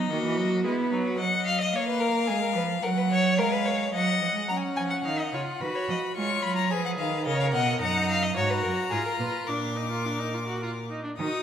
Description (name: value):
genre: classical, baroque-style fugue for string quartet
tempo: 109 BPM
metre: 3/4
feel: straight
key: unclear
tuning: A4 = 440 Hz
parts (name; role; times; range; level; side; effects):
- clear violin; melody; 0.0-11.4 s; B4 to Eb6; -30 LUFS; left 7 dB; none
- rich violin; second line; 0.0-11.4 s; D#4 to A#5; -29 LUFS; left 2 dB; none
- clear viola; accompaniment; 0.0-1.2, 4.5-11.4 s; F#3 to A#4; -32 LUFS; right 2 dB; none
- rich cello; bass; 0.0-11.3 s; Gb2 to B3; -29 LUFS; right 4 dB; none
room: moderate scoring stage reverb, RT60 1.9 s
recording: none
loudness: -24 LUFS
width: side -9 dB against mid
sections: 0.0-4.5 A section; 4.5-11.2 B section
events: none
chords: 0.0 B/D#; 0.6 B5; 1.2 F#; 2.3 Fm/Ab; 2.8 F#5; 3.9 D#m; 4.5 F#5; 5.6 B5; 6.2 Fdim; 7.3 A#m/C#; 7.8 Ebm/Gb; 8.9 Fdim/Ab; 9.5 Bb